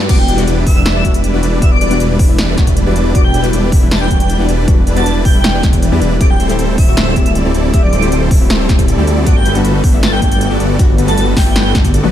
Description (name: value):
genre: future bass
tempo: 157 BPM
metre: 4/4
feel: half-time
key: E minor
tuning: A4 = 440 Hz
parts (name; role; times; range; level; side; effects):
- supersaw chords; riff; 0.0-12.1 s; G3 to E5; -18 LUFS; equal; sidechain pumping
- wide detuned saw bass; bass; 0.0-12.1 s; D1 to G2; -15 LUFS; equal; chorus, tube saturation, sidechain pumping
- airy dreamy lead; melody; 0.1-11.7 s; D5 to A5; -21 LUFS; equal; chorus, phaser, sidechain pumping, dub echo
- soft round pluck; accompaniment; 0.1-12.1 s; G3 to G4; -21 LUFS; left 4 dB; chorus, sidechain pumping
- big-room dance drum kit; drums; 0.1-12.1 s; crash cymbal, hi-hat, ride cymbal, snare drum, toms; -20 LUFS; equal; none
- electronic kick drum; drums; 0.1-11.9 s; none; -12 LUFS; equal; none
room: little or no reverb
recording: none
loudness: -9 LUFS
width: side -11 dB against mid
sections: 0.0-12.1 A section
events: none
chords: 0.1 Em7; 6.2 D9sus4; 9.3 Gmaj9